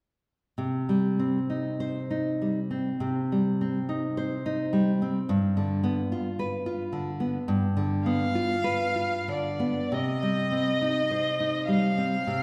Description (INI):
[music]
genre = romantic duo for violin and classical guitar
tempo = 45-56 BPM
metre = 4/4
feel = rubato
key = C minor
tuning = A4 = 440 Hz
[part]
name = nylon-string guitar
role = accompaniment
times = 0.6-12.4 s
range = G2 to C5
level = -28 LUFS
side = equal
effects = none
[part]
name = rich violin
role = melody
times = 8.1-12.4 s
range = D5 to F5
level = -30 LUFS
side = equal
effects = none
[sound]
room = wet concert hall reverb, RT60 2.2 s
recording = recorded in a church or concert hall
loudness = -27 LUFS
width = mono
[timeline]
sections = 0.6-9.9 A section; 9.9-12.4 B section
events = none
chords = 0.6 Cm; 5.3 G7; 9.9 Cm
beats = | 0.58 1.80 3.00 4.17 | 5.29 6.38 7.49 8.66 | 9.93 11.12 12.27